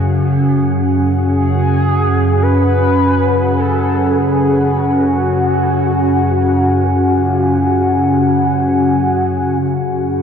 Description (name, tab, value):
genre	dark ambient drone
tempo	free time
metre	none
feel	none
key	unclear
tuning	A4 = 440 Hz
part	dark analog pad	sustained chords	0.0-10.2 s	C#4 to G#5	-15 LUFS	equal	chorus
part	organ-like drone	drone	0.0-10.2 s	F#2 to C#3	-16 LUFS	equal	ensemble chorus, built-in reverb
part	mellow horn-like synth lead	melody	1.2-10.2 s	F#4 to B4	-20 LUFS	left 1 dB	phaser, wide subtle chorus, tape echo
room	wet huge ambient reverb, RT60 8.6 s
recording	dreamy mix soaked in reverb, cassette tape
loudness	-12 LUFS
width	side -7 dB against mid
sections	0.0-9.6 A section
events	none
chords	0.0 F#sus2